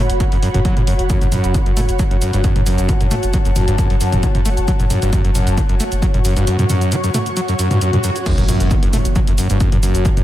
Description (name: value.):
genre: driving peak-time techno.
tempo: 134 BPM.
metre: 4/4.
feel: straight.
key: F# minor.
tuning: A4 = 439 Hz.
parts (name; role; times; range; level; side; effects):
saturated sub bass; bass; 0.0-10.2 s; F#1; -19 LUFS; equal; overdrive, sidechain pumping, low-pass filter.
ethereal airy pad; texture; 0.0-10.2 s; F#4 to C#6; -23 LUFS; left 1 dB; ensemble chorus, built-in reverb, sidechain pumping.
punchy analog drum machine; drums; 0.1-10.2 s; crash cymbal, hi-hat, shaker, toms; -23 LUFS; right 1 dB; sidechain pumping on hats, sidechain pumping on toms, sidechain pumping on perc, sidechain pumping on cymbals.
screaming distorted acid line; riff; 0.2-10.2 s; F#2 to A3; -19 LUFS; equal; distortion, chorus, sidechain pumping, diffuse ambient delay.
electronic kick drum; drums; 0.2-10.1 s; none; -17 LUFS; equal; none.
swell and impact; sound effects; 7.5-10.1 s; none; -24 LUFS; equal; none.
room: light reverb, digital ambience.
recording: none.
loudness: -14 LUFS.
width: side -14 dB against mid.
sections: 0.0-8.3 A section; 8.3-10.2 B section.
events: swell 7.5-8.3; drop 8.3-10.2; impact 8.3-10.1.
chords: 0.0 F#m.